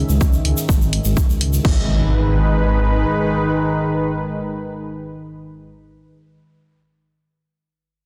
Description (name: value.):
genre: melodic techno.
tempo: 125 BPM.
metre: 4/4.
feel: straight.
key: G# minor.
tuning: A4 = 440 Hz.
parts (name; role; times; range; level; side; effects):
lush unison pad; sustained chords; 0.0-5.7 s; G#3 to E5; -26 LUFS; equal; chorus, vintage 12-bit sampler grit, sidechain pumping.
dark detuned saw bass; bass; 0.0-3.0 s; G#1 to C#2; -20 LUFS; equal; sidechain pumping.
analog drone; drone; 0.0-5.7 s; G#2 to D#3; -27 LUFS; equal; chorus, sidechain pumping.
egg shaker; percussion; 0.1-1.6 s; none; -31 LUFS; equal; none.
electronic kick drum; drums; 0.2-1.7 s; none; -19 LUFS; equal; overdrive.
punchy analog drum machine; drums; 0.5-1.7 s; crash cymbal, hi-hat; -29 LUFS; equal; none.
impact; sound effects; 1.7-5.7 s; none; -30 LUFS; equal; none.
room: moderate lush hall reverb, RT60 2.3 s.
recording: dense, heavily limited modern master.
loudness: -18 LUFS.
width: mono.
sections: 0.0-1.6 A section; 1.6-5.5 B section.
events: none.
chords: 0.0 C#m; 1.6 G#m.